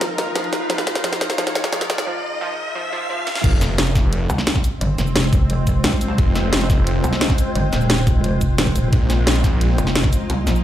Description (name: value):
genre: dark technical drum and bass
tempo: 175 BPM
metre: 4/4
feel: straight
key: F minor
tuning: A4 = 441 Hz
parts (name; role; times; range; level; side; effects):
- swarming drone; sustained chords; 0.0-10.6 s; F3 to Eb5; -28 LUFS; equal; built-in reverb, sidechain pumping
- wide unison pluck; arpeggios; 0.0-3.2 s; F3; -30 LUFS; right 2 dB; sidechain pumping, tape echo
- drum and bass drum kit; drums; 0.0-10.6 s; cabasa, crash cymbal, hi-hat, snare drum; -21 LUFS; equal; none
- riser, swell and impact; sound effects; 0.0-4.8 s; none; -26 LUFS; equal; none
- granular cloud pad; texture; 0.0-10.6 s; C4 to F5; -28 LUFS; equal; built-in reverb, sidechain pumping
- snarling distorted saw bass; bass; 3.4-9.8 s; F1 to Bb1; -18 LUFS; equal; overdrive
- electronic kick drum; drums; 3.4-10.1 s; none; -18 LUFS; equal; none
- metallic wobble bass; bass; 4.3-10.6 s; Eb1 to C2; -20 LUFS; equal; chorus
room: light reverb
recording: played on a big sound system in a bare room, large studio reverb, high-pass filter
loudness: -16 LUFS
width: side -12 dB against mid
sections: 0.0-3.4 A section; 3.4-10.6 B section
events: build-up 0.0-3.4; drum fill 0.0-2.1, 3.3; riser 0.0-3.4; filter sweep on synth drone 0.0-3.4; filter sweep on synth arpeggio sound 0.0-3.4; break 2.1-3.4; swell 2.8-3.4; drop 3.4-10.6; impact 3.4-4.8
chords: 0.0 Fm; 8.9 Bbsus4